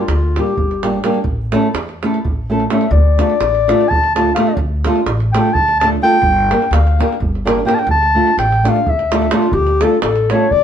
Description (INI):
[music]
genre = balkan folk, Balkan wedding band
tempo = 254 BPM (eighths)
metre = 7/8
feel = straight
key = D harmonic minor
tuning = A4 = 440 Hz
[part]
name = dark clarinet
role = melody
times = 0.0-10.6 s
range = F4 to A5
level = -15 LUFS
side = left 2 dB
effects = none
[part]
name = flamenco guitar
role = accompaniment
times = 0.0-10.5 s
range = G3 to Bb4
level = -17 LUFS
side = right 1 dB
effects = none
[part]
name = upright bass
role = bass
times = 0.1-10.6 s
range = G1 to E2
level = -18 LUFS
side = equal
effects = none
[part]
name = davul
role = percussion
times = 0.1-10.6 s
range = none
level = -21 LUFS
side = right 2 dB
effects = none
[sound]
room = moderate stone room reverb, RT60 1.0 s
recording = band playing live in one room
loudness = -12 LUFS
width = side -9 dB against mid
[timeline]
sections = 0.0-9.5 A section; 9.5-10.6 B section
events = clarinet solo 0.0-9.5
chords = 0.0 Gm; 1.3 A; 2.9 Dm; 6.2 Gm; 7.9 Dm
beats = 0.06 0.30 0.54 0.78 1.01 | 1.25 1.49 1.73 1.96 2.20 2.44 2.67 | 2.91 3.15 3.39 3.62 3.86 4.10 4.33 | 4.57 4.81 5.04 5.28 5.52 5.75 5.99 | 6.22 6.46 6.70 6.93 7.17 7.41 7.64 | 7.88 8.12 8.35 8.59 8.82 9.06 9.29 | 9.53 9.77 10.00 10.24 10.47